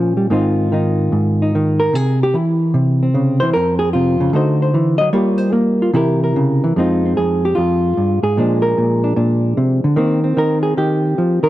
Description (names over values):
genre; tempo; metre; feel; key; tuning
solo jazz; 149 BPM; 4/4; swing 67% on 8ths, rubato; F minor; A4 = 440 Hz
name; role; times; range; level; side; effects
hollow-body jazz guitar; solo; 0.0-11.5 s; F2 to Eb5; -13 LUFS; equal; none
room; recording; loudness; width
light reverb; dry, close 1970s-style studio recording; -14 LUFS; side -15 dB against mid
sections
0.0-6.8 A section; 6.8-11.5 A section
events
hollow-body jazz guitar solo 0.0-11.5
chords
0.3 Ab6; 1.9 C; 3.5 F5; 4.3 D7b9; 5.1 Gm7b5; 5.9 C7; 6.8 Fm7; 8.4 Bb7; 10.0 Eb6